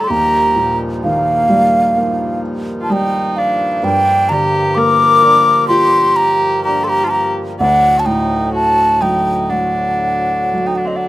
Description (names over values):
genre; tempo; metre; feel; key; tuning
celtic folk, Celtic slow air; 64 BPM; 4/4; rubato; G minor; A4 = 437 Hz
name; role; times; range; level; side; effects
baroque flute; melody; 0.0-11.1 s; Eb5 to D6; -13 LUFS; equal; none
clear viola; second line; 0.0-11.1 s; Bb3 to Bb4; -22 LUFS; equal; none
felt-muted upright piano; accompaniment; 0.0-11.1 s; D2 to F4; -20 LUFS; right 1 dB; none
hand-pumped harmonium; sustained chords; 0.0-11.1 s; D2 to Bb3; -26 LUFS; equal; none
room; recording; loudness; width
small room ambience; rough home demo mix; -12 LUFS; side -15 dB against mid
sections
0.0-11.1 A section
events
none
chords
0.1 Ebadd9; 3.8 Gm7; 7.6 D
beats
| 0.11 1.04 1.98 2.91 | 3.83 4.76 5.69 6.64 | 7.60 8.53 9.50 10.53